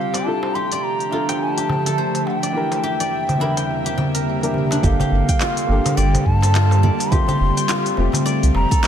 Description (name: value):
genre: organic downtempo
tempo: 105 BPM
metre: 4/4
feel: swing 59% on 16ths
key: G dorian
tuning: A4 = 439 Hz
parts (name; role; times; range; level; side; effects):
- bansuri; melody; 0.0-8.9 s; F5 to C6; -24 LUFS; left 1 dB; digital delay
- felt-muted upright piano; accompaniment; 0.0-8.9 s; E3 to E5; -27 LUFS; left 2 dB; sidechain pumping, ping-pong delay
- bowed-like drone; sustained chords; 0.0-8.9 s; E2 to E5; -25 LUFS; right 1 dB; built-in reverb, sidechain pumping
- guzheng; arpeggios; 0.0-8.9 s; D4 to G5; -27 LUFS; left 1 dB; ping-pong delay
- drifting glass-harmonics texture; texture; 0.0-4.8 s; G4 to G5; -36 LUFS; right 1 dB; chorus, built-in reverb
- organic electronic drum kit; drums; 0.1-8.9 s; congas, handclaps, hi-hat, shaker; -26 LUFS; right 1 dB; none
- darbuka; percussion; 0.1-8.7 s; none; -25 LUFS; equal; none
- warm sub bass; bass; 4.8-8.7 s; F1 to G2; -16 LUFS; equal; sidechain pumping
- electronic kick drum; drums; 4.8-8.8 s; none; -18 LUFS; equal; none
room: moderate concert hall reverb, RT60 2.0 s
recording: none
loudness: -16 LUFS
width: side -9 dB against mid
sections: 0.0-4.8 A section; 4.8-8.9 B section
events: filter sweep on guzheng 0.0-4.8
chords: 0.3 Dmadd9; 2.6 C7/E; 4.8 Gmadd9; 7.1 Fadd9